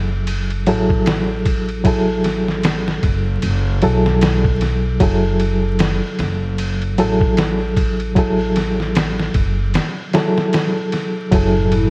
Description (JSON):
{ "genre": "trip hop", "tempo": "76 BPM", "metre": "4/4", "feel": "swing 58% on 16ths", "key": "F# minor", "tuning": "A4 = 440 Hz", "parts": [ { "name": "reed electric piano", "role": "accompaniment", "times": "0.0-11.9 s", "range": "F#3 to A4", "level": "-18 LUFS", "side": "equal", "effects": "tremolo, vintage 12-bit sampler grit, low-pass filter, tape echo" }, { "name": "upright bass", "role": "bass", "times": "0.0-11.9 s", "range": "F#1 to B1", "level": "-20 LUFS", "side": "equal", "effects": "none" }, { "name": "trip hop sampler-style drum kit", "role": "drums", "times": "0.3-11.9 s", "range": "kick drum, ride cymbal, snare drum", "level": "-20 LUFS", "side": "equal", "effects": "none" }, { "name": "warbly tape-like pad", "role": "sustained chords", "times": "11.3-11.9 s", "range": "A2 to E4", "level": "-20 LUFS", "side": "equal", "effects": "chorus, built-in reverb" } ], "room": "light reverb", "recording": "worn, warbling old tape, cassette tape, vinyl crackle, warbly pitch drift", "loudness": "-15 LUFS", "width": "side -28 dB against mid", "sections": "0.0-11.9 A section", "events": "none", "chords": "0.0 F#m9" }